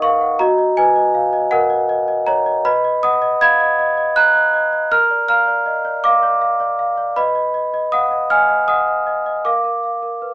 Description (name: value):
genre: classical, lullaby for celesta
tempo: 53 BPM (dotted quarters)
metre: 6/8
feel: straight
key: unclear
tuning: A4 = 440 Hz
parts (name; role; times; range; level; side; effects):
- large celesta; solo; 0.0-10.3 s; D#4 to Ab6; -14 LUFS; equal; none
room: moderate studio reverb, RT60 0.6 s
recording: small speaker sound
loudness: -14 LUFS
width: side -18 dB against mid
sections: 0.0-10.3 A section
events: none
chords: 0.4 D#m/F#; 2.6 Abm/Cb; 4.9 Bb; 7.2 B; 9.4 Bb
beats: | 0.39 1.51 | 2.64 3.78 | 4.90 6.03 | 7.16 8.30 | 9.45